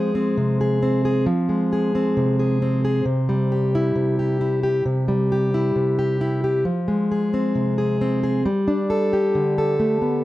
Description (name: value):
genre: folk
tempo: 134 BPM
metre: 4/4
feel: straight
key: C major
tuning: A4 = 439 Hz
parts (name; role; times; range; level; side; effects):
- fingerpicked plugged-in steel-string acoustic guitar; solo; 0.0-10.2 s; C3 to C5; -18 LUFS; equal; none
room: studio reverb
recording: dry, close 1970s-style studio recording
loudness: -18 LUFS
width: side -16 dB against mid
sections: 0.0-10.2 A section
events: none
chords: 0.0 Fm; 3.1 C; 6.7 Fm; 8.5 Gadd9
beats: 0.38 0.82 | 1.27 1.72 2.17 2.62 | 3.07 3.52 3.96 4.41 | 4.86 5.31 5.76 6.21 | 6.66 7.11 7.56 8.01 | 8.46 8.90 9.35 9.80